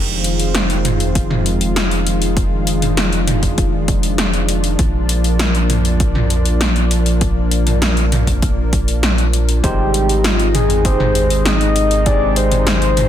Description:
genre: synthwave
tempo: 99 BPM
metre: 4/4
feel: straight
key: F dorian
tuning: A4 = 438 Hz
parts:
  - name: lush unison pad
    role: sustained chords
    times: 0.0-13.1 s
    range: C3 to F4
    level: -21 LUFS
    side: left 1 dB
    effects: chorus, sidechain pumping
  - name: round analog bass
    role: bass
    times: 0.0-13.1 s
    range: F1 to Bb1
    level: -18 LUFS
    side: equal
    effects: none
  - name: 80s electronic pad drums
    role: drums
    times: 0.2-13.1 s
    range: hi-hat, snare drum, toms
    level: -19 LUFS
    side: equal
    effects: gated reverb on snare and toms
  - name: electronic kick drum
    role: drums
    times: 1.2-12.2 s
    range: none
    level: -18 LUFS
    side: equal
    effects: none
  - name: soft octave-layered synth lead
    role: melody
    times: 9.6-13.1 s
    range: F4 to Eb5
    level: -17 LUFS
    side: left 1 dB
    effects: chorus, tape echo
  - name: overdriven tine electric piano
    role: stabs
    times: 9.6-13.1 s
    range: Ab3 to C5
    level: -24 LUFS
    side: left 1 dB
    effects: tape echo
room: light reverb, digital ambience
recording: dense, heavily limited modern master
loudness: -13 LUFS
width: side -10 dB against mid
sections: 0.0-13.1 A section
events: none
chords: 0.0 Fm7; 4.8 Bb; 9.6 Abmaj7

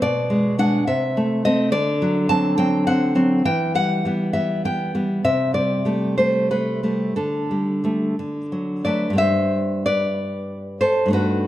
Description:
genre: romantic piece for solo classical guitar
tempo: 58-71 BPM (dotted quarters)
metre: 6/8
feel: rubato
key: G major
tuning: A4 = 440 Hz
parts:
  - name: nylon-string guitar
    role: solo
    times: 0.0-11.5 s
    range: G2 to A5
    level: -18 LUFS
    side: equal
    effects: none
room: moderate recital hall reverb, RT60 1.7 s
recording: lossy compression artefacts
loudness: -18 LUFS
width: side -14 dB against mid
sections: 0.0-9.2 A section; 9.2-11.5 B section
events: none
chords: 0.0 G#dim/B; 0.9 Am/C; 1.7 D7; 3.4 Em; 5.2 Am7/C; 7.2 Dsus4; 8.2 D; 9.2 G

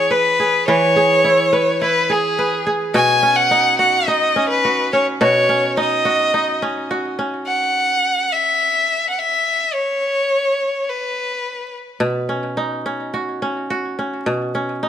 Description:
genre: folktronica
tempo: 106 BPM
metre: 4/4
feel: straight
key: unclear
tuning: A4 = 440 Hz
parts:
  - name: rich violin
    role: melody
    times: 0.0-11.7 s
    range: G#4 to G#5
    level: -16 LUFS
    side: left 1 dB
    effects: ping-pong delay
  - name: kora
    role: arpeggios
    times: 0.0-14.9 s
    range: B2 to B4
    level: -20 LUFS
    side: right 2 dB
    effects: none
room: moderate studio reverb, RT60 0.7 s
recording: vinyl crackle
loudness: -15 LUFS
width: side -9 dB against mid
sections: 0.0-7.5 A section; 7.5-14.9 B section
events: none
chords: 0.0 E; 2.9 Badd9; 7.5 N.C.; 12.0 Badd9

